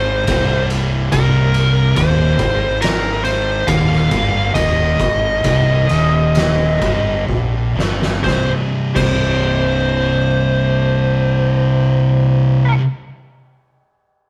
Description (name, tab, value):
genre	stoner and doom metal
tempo	62-71 BPM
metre	4/4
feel	straight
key	C minor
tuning	A4 = 440 Hz
part	fuzz lead guitar	melody	0.0-12.7 s	Bb4 to F5	-21 LUFS	equal	distortion
part	thick fuzz guitar	riff	0.0-12.8 s	C2 to C3	-21 LUFS	equal	distortion
part	thick fuzz guitar	riff	0.0-12.8 s	C2 to C3	-22 LUFS	equal	distortion
part	fuzz fingered electric bass	bass	0.0-12.7 s	C1 to Bb1	-25 LUFS	equal	overdrive
part	oversized low-tuned drum kit	drums	0.3-9.2 s	crash cymbal, kick drum, ride cymbal, snare drum	-23 LUFS	equal	none
room	moderate stone room reverb, RT60 1.5 s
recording	rough rehearsal-room recording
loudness	-16 LUFS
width	mono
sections	0.0-8.2 A section; 8.2-12.1 B section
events	slowing down 1.1-8.2; drum fill 7.3-8.2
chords	0.0 Cm; 8.2 C5